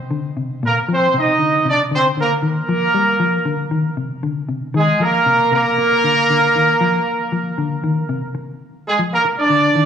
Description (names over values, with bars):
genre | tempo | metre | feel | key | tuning
afrobeat | 117 BPM | 4/4 | straight | unclear | A4 = 440 Hz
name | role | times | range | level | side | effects
mellow electric guitar | arpeggios | 0.0-9.9 s | Bb2 to G3 | -21 LUFS | left 3 dB | slapback echo
warm horn section | melody | 0.7-9.9 s | Ab3 to Eb5 | -15 LUFS | right 2 dB | slapback echo
room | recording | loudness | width
light reverb, small room ambience | live gig heard through the venue's PA, club reverb | -15 LUFS | side -8 dB against mid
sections
0.0-8.9 A section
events
none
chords
0.0 Csus2; 0.6 Bbsus4; 4.7 Cm11; 8.9 Cm11 (rootless)